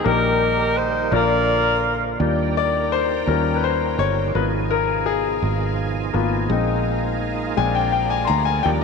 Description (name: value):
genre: gospel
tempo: 56 BPM (dotted quarters)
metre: 6/8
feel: straight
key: Eb major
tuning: A4 = 438 Hz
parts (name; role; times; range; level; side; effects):
- warm saxophone section; melody; 0.0-2.2 s; Eb4 to D5; -21 LUFS; equal; none
- bright concert grand piano; accompaniment; 0.0-8.8 s; Bb2 to C6; -21 LUFS; left 11 dB; none
- overdriven tonewheel organ; sustained chords; 0.0-8.8 s; Cb3 to Ab4; -28 LUFS; right 12 dB; slow rotary speaker, chorus vibrato
- fingered electric bass; bass; 0.1-8.8 s; G1 to Eb2; -24 LUFS; right 3 dB; none
- clear studio string section; sustained chords; 2.2-8.8 s; Db4 to Bb5; -34 LUFS; equal; none
room: moderate plate reverb, RT60 3.9 s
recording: 1960s-style stereo with parts hard left and right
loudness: -18 LUFS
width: side -5 dB against mid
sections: 0.0-2.2 A section; 2.2-8.8 B section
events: grand piano solo 2.2-8.8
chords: 0.1 Eb/Bb; 1.1 Bb; 2.2 Ebmaj7; 3.3 Eb7; 4.4 Abm6; 6.5 Bb7sus4; 7.6 Bb7